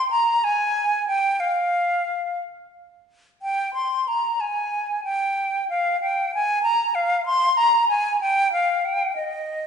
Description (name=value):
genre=classical, baroque-style fantasia for unaccompanied flute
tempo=61 BPM (dotted quarters)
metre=6/8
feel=rubato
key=unclear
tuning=A4 = 440 Hz
part: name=bright silver concert flute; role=solo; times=0.0-9.7 s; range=Eb5 to C6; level=-20 LUFS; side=equal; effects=none
room=wet recital hall reverb, RT60 1.5 s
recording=heard from further back in the room, nothing above 10.8 kHz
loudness=-20 LUFS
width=side -7 dB against mid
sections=0.0-9.7 A section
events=none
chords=none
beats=0.43 | 1.42 2.42 | 3.42 4.41 | 5.38 6.33 | 7.25 8.20 | 9.19